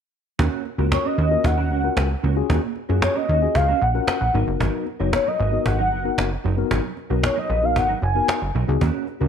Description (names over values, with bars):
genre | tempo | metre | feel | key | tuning
early-eighties boogie funk | 114 BPM | 4/4 | straight | Eb minor | A4 = 441 Hz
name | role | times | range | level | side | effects
mellow electric guitar | riff | 0.4-9.3 s | Gb3 to Db5 | -29 LUFS | right 13 dB | ensemble chorus
plucky analog bass | bass | 0.4-9.3 s | Gb1 to Gb2 | -22 LUFS | right 1 dB | none
cajon | drums | 0.4-9.3 s | none | -26 LUFS | right 1 dB | none
mellow tine electric piano | accompaniment | 0.8-9.3 s | Cb4 to Db5 | -27 LUFS | left 14 dB | medium stereo tremolo
warm velvety synth lead | melody | 0.9-8.5 s | Db5 to Ab5 | -23 LUFS | left 1 dB | chorus, slapback echo
room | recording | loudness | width
light reverb, digital ambience | 1960s-style stereo with parts hard left and right | -19 LUFS | side -8 dB against mid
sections
0.4-9.3 A section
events
none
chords
0.4 Ebm7; 4.3 Abm9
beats
| 0.39 0.92 1.44 1.97 | 2.50 3.02 3.55 4.08 | 4.60 5.13 5.66 6.18 | 6.71 7.23 7.76 8.29 | 8.81